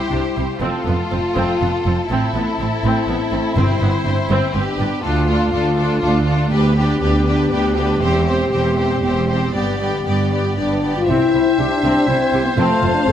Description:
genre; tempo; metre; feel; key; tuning
cinematic, heroic adventure film score; 121 BPM; 3/4; straight; C major; A4 = 442 Hz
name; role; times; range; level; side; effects
clear symphonic violin section; melody; 0.0-13.1 s; A4 to F5; -27 LUFS; left 3 dB; none
warm symphonic violin section; second line; 0.0-13.1 s; E4 to C5; -25 LUFS; left 1 dB; none
dark symphonic viola section; accompaniment; 0.0-13.1 s; B3 to A4; -25 LUFS; equal; none
mellow French horn section; sustained chords; 0.0-13.1 s; G3 to G4; -21 LUFS; left 3 dB; none
rich symphonic cello section; bass; 0.1-13.1 s; D2 to C3; -22 LUFS; right 2 dB; none
rich symphonic double bass section; bass; 0.1-13.1 s; E1 to D2; -22 LUFS; right 2 dB; none
timpani; percussion; 3.6-4.3, 11.1-11.8 s; G2 to C3; -25 LUFS; left 1 dB; none
mellow hollow concert flute; second line; 11.1-13.1 s; G5 to A5; -24 LUFS; left 3 dB; none
warm oboe; second line; 11.1-13.1 s; C5; -24 LUFS; equal; none
warm clarinet; second line; 11.6-13.1 s; E4 to A4; -26 LUFS; equal; none
room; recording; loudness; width
moderate scoring stage reverb, RT60 1.6 s; none; -15 LUFS; side -10 dB against mid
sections
0.0-11.1 A section; 11.1-13.1 B section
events
build-up 0.0-11.1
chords
0.0 C; 0.6 F; 2.1 Am; 3.6 C/G; 4.5 G; 5.0 Dm; 6.5 G/D; 8.0 C/E; 9.5 G; 11.1 C; 12.6 F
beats
0.10 | 0.60 1.10 1.59 | 2.09 2.58 3.07 | 3.56 4.05 4.54 | 5.04 5.53 6.02 | 6.52 7.02 7.51 | 8.01 8.51 9.02 | 9.54 10.05 10.57 | 11.08 11.58 12.08 | 12.58 13.07

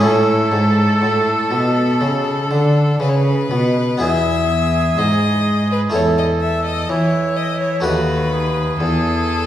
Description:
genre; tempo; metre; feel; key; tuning
classical, baroque-style sonata movement with continuo; 62 BPM; 4/4; straight; A major, E major from 4.0 s; A4 = 439 Hz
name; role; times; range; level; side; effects
rich violin; melody; 0.0-9.5 s; A4 to E5; -22 LUFS; left 3 dB; none
clear oboe; second line; 0.0-9.5 s; E4 to A4; -22 LUFS; right 2 dB; none
harpsichord; accompaniment; 0.0-9.5 s; D#2 to B4; -21 LUFS; equal; none
rich cello; bass; 0.0-9.5 s; D#2 to E3; -18 LUFS; equal; none
room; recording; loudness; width
wet recital hall reverb, RT60 1.6 s; heard from further back in the room; -14 LUFS; side -11 dB against mid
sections
0.0-4.0 A section; 4.0-9.5 A section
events
none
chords
0.0 A; 4.0 E; 5.9 A5/E; 7.9 B7/D#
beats
| 0.04 1.03 2.02 3.01 | 4.02 4.98 5.94 6.89 | 7.85 8.80

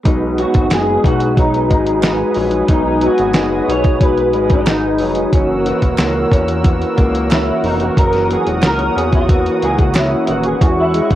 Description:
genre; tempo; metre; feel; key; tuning
indie pop, bedroom pop; 91 BPM; 4/4; straight; B major; A4 = 440 Hz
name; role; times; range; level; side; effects
mellow tonewheel organ; accompaniment; 0.0-11.2 s; E3 to C#5; -21 LUFS; right 3 dB; chorus vibrato, cassette tape, plate reverb
electric guitar through a small old amp; accompaniment; 0.1-11.2 s; F#2 to F#4; -18 LUFS; left 3 dB; wide subtle chorus, warbly pitch drift, cassette tape, plate reverb
warm analog pad; sustained chords; 0.1-11.2 s; G#4 to E6; -24 LUFS; right 1 dB; chorus, cassette tape, plate reverb
fat analog bass; bass; 0.1-11.2 s; D#1 to E2; -21 LUFS; equal; none
dusty soul sampler-style drum kit; drums; 0.1-11.2 s; hi-hat, kick drum, snare drum; -15 LUFS; equal; cassette tape
electric guitar through a small old amp; melody; 0.4-11.2 s; D#4 to C#5; -19 LUFS; right 1 dB; ensemble chorus, analog delay, plate reverb
group handclap; percussion; 0.7-10.1 s; none; -30 LUFS; right 7 dB; none
room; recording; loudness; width
light reverb; home recording on cassette; -12 LUFS; side -13 dB against mid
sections
0.1-11.2 A section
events
clean electric guitar solo 0.1-11.2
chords
0.1 B6; 5.3 F#7; 10.6 E69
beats
| 0.06 0.71 1.38 2.03 | 2.69 3.35 4.01 4.67 | 5.33 5.99 6.65 7.31 | 7.97 8.63 9.29 9.95 | 10.61

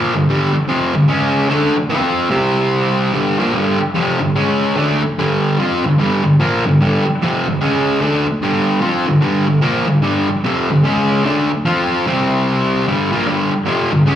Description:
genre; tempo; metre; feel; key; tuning
rock; 148 BPM; 4/4; swing 63% on 8ths; G minor; A4 = 440 Hz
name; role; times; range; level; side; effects
fuzz guitar; solo; 0.0-14.2 s; F2 to F4; -13 LUFS; equal; distortion, slapback echo
room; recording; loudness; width
light reverb, digital ambience; live gig heard through the venue's PA, club reverb; -13 LUFS; side -10 dB against mid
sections
0.0-13.3 A section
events
none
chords
0.0 Gm; 1.1 C#5; 1.5 N.C.; 1.9 F5; 2.3 C5; 3.1 Gm; 4.4 C#5; 4.8 Gm; 7.6 C#5; 8.0 Gm; 10.8 C#5; 11.2 N.C.; 11.6 F5; 12.1 C5; 12.9 Gm; 13.3 G5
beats
| 0.29 0.70 1.11 1.51 | 1.92 2.33 2.73 3.14 | 3.54 3.95 4.36 4.76 | 5.17 5.57 5.98 6.38 | 6.79 7.19 7.60 8.00 | 8.41 8.81 9.22 9.62 | 10.03 10.43 10.84 11.24 | 11.64 12.05 12.45 12.86 | 13.26 13.67 14.07

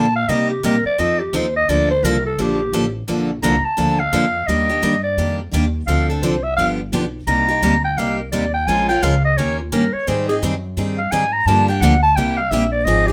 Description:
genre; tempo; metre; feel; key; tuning
acoustic string swing (jazz manouche); 172 BPM; 4/4; swing 62% on 8ths; Bb major, Eb major from 4.5 s; A4 = 439 Hz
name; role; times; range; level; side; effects
growling clarinet; second line; 0.0-13.1 s; F4 to Bb5; -21 LUFS; equal; none
picked steel-string acoustic guitar; accompaniment; 0.0-13.1 s; C3 to Bb4; -24 LUFS; equal; none
picked steel-string acoustic guitar; accompaniment; 0.0-13.1 s; C3 to Bb4; -27 LUFS; equal; none
upright bass; bass; 0.0-13.1 s; G1 to C3; -24 LUFS; equal; none
room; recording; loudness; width
light reverb; none; -18 LUFS; mono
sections
0.0-4.5 A section; 4.5-13.1 A section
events
clarinet solo 0.0-13.1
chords
0.3 Cm7; 1.0 F7; 1.7 Bbmaj7; 4.5 Ebmaj7; 5.9 Dm7; 6.6 G7; 7.3 Cm7; 8.7 Bbm7; 9.4 Eb7; 10.1 Abmaj7; 11.5 Gm7; 12.2 C7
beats
| 0.28 0.64 0.98 1.33 | 1.68 2.03 2.38 2.73 | 3.08 3.43 3.78 4.13 | 4.48 4.83 5.18 5.53 | 5.88 6.22 6.58 6.92 | 7.27 7.62 7.97 8.32 | 8.67 9.02 9.37 9.72 | 10.07 10.42 10.77 11.12 | 11.46 11.81 12.16 12.51 | 12.86

